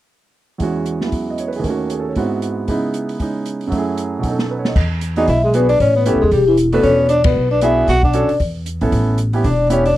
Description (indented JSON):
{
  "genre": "jazz, small-group swing and bop",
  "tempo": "231 BPM",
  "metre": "4/4",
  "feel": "swing 58% on 8ths",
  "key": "E major",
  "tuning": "A4 = 441 Hz",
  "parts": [
    { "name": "warm baby grand piano", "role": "accompaniment", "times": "0.6-9.8 s", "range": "D#2 to D#5", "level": "-20 LUFS", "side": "right 3 dB", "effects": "none" },
    { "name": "open jazz drum kit", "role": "drums", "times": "0.6-9.9 s", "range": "crash cymbal, hi-hat, kick drum, ride cymbal, snare drum", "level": "-21 LUFS", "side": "equal", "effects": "none" },
    { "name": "upright bass", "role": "bass", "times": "4.8-9.9 s", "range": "E1 to E2", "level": "-18 LUFS", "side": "equal", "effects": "none" },
    { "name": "vibraphone with soft mallets", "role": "melody", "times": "5.2-10.0 s", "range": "E4 to F#5", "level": "-15 LUFS", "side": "left 3 dB", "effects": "none" },
    { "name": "growling tenor saxophone", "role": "second line", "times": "5.2-10.0 s", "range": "E3 to F#4", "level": "-20 LUFS", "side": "right 3 dB", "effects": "none" }
  ],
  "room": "little or no reverb",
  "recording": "dry, close 1970s-style studio recording",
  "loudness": "-14 LUFS",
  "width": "side -14 dB against mid",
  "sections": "0.6-4.8 A section; 4.8-10.0 B section",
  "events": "drum fill 4.5; band accent 7.2",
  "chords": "0.6 E69; 1.6 D#m7b5; 2.2 G#7alt; 2.7 C#m7; 3.7 F#m7; 4.2 B7; 4.8 E7; 5.8 A7; 6.8 E7; 7.9 Bm7; 8.4 E5; 8.9 A7",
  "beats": "| 0.60 0.86 1.12 1.38 | 1.64 1.90 2.16 2.42 | 2.68 2.94 3.20 3.46 | 3.72 3.98 4.24 4.50 | 4.76 5.02 5.28 5.54 | 5.80 6.06 6.32 6.58 | 6.84 7.10 7.36 7.62 | 7.88 8.14 8.40 8.66 | 8.92 9.18 9.44 9.70"
}